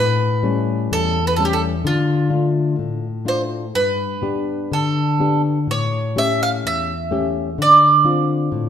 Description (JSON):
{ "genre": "fado-style ballad", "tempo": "63 BPM", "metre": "2/4", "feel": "rubato", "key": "unclear", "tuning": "A4 = 443 Hz", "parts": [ { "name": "bowl-back mandolin", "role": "melody", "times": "0.0-8.5 s", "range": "F4 to F5", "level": "-18 LUFS", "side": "right 3 dB", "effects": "none" }, { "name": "nylon-string guitar", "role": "accompaniment", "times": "0.0-8.7 s", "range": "E2 to G4", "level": "-20 LUFS", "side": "left 3 dB", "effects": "none" } ], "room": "wet recital hall reverb, RT60 1.3 s", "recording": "none", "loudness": "-16 LUFS", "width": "side -8 dB against mid", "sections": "0.0-8.7 A section", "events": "none", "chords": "0.0 A7; 1.8 Dm; 3.7 G; 5.7 A7; 7.6 Dm7", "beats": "0.89 | 1.83 2.77 | 3.73 4.70 | 5.68 6.64 | 7.59 8.52" }